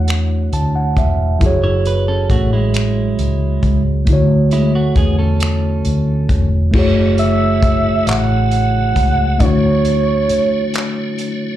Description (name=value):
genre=slow six-eight R&B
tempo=45 BPM (dotted quarters)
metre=6/8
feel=straight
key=F# minor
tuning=A4 = 439 Hz
part: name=gliding portamento lead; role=melody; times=0.0-0.5, 7.2-11.2 s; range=C#5 to F#5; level=-19 LUFS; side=right 4 dB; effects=chorus, slapback echo, tape echo
part: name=mellow tine electric piano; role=accompaniment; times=0.0-11.6 s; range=D3 to A5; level=-18 LUFS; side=left 1 dB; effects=slow stereo tremolo, slapback echo
part: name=vintage muted fingered electric bass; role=bass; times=0.0-10.3 s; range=E1 to E2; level=-16 LUFS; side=equal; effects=none
part: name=warm soul drum kit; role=drums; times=0.1-11.4 s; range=crash cymbal, finger snaps, handclaps, hi-hat, kick drum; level=-18 LUFS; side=equal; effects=none
part: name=clean electric guitar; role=second line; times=1.6-6.5 s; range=G#3 to C#5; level=-23 LUFS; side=right 5 dB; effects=slapback echo
part: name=tonewheel organ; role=sustained chords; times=6.7-11.6 s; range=C#3 to C#5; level=-27 LUFS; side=equal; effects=chorus vibrato, fast rotary speaker
room=light reverb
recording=live gig heard through the venue's PA, club reverb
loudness=-13 LUFS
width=side -12 dB against mid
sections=0.0-6.7 A section; 6.7-11.6 B section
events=tine electric piano fill 0.1-1.4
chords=0.0 Dmaj9; 1.4 F#m7; 4.1 Dmaj9; 6.7 F#m7; 9.4 Dmaj9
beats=0.08 | 1.41 2.74 | 4.08 5.41 | 6.74 8.08 | 9.41 10.74